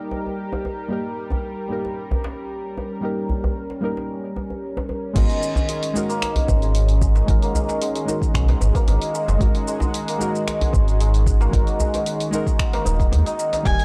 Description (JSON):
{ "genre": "organic downtempo", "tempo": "113 BPM", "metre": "4/4", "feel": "straight", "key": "unclear", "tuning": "A4 = 439 Hz", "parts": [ { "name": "deep mellow chord stab", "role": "accompaniment", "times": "0.0-13.8 s", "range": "G3 to A#4", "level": "-32 LUFS", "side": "equal", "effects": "chorus, sidechain pumping" }, { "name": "warm analog pad", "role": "sustained chords", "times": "0.0-13.8 s", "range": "D#3 to A#4", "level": "-32 LUFS", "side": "equal", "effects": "chorus, sidechain pumping" }, { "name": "djembe", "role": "percussion", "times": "0.1-13.8 s", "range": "none", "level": "-28 LUFS", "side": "equal", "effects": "none" }, { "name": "santur", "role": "arpeggios", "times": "5.2-13.8 s", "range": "G3 to D#4", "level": "-28 LUFS", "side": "equal", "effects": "tape echo" }, { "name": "round analog bass", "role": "bass", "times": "5.2-13.8 s", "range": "D#1 to D#2", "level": "-20 LUFS", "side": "equal", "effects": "sidechain pumping" }, { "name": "deep house drum kit", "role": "drums", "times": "5.2-13.8 s", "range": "crash cymbal, finger snaps, hi-hat, shaker", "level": "-34 LUFS", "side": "equal", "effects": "overdrive" }, { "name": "electronic kick drum", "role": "drums", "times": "5.2-13.8 s", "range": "none", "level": "-22 LUFS", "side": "equal", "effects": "overdrive" }, { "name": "clear kamancheh", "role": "melody", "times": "13.7-13.8 s", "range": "G#5", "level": "-25 LUFS", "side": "equal", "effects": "none" } ], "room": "little or no reverb", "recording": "dry, gritty hardware recording, transformer saturation, cassette tape", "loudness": "-21 LUFS", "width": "mono", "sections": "0.0-5.2 A section; 5.2-13.8 B section", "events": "none", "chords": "0.0 D#; 5.2 G#m7", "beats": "0.38 | 0.91 1.44 1.97 2.50 | 3.03 3.56 4.10 4.63 | 5.16 5.69 6.22 6.75 | 7.28 7.81 8.34 8.88 | 9.41 9.94 10.47 11.00 | 11.53 12.06 12.59 13.12 | 13.65" }